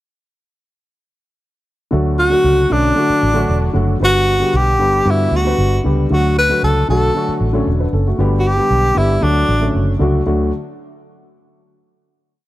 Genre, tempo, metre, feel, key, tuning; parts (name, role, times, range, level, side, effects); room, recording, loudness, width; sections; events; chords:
uptempo 1960s-style soul; 115 BPM; 4/4; straight; D major; A4 = 440 Hz
dark upright piano; accompaniment; 1.9-10.5 s; D3 to B4; -19 LUFS; left 1 dB
vintage muted fingered electric bass; bass; 1.9-10.5 s; E1 to G2; -17 LUFS; equal
breathy tenor saxophone; melody; 2.2-9.7 s; D4 to B4; -16 LUFS; equal
light reverb, small room ambience; -13 LUFS; side -16 dB against mid
1.9-10.3 A section; 10.3-12.3 final chord
1.9 D; 4.0 G; 6.1 D; 8.2 G; 9.2 D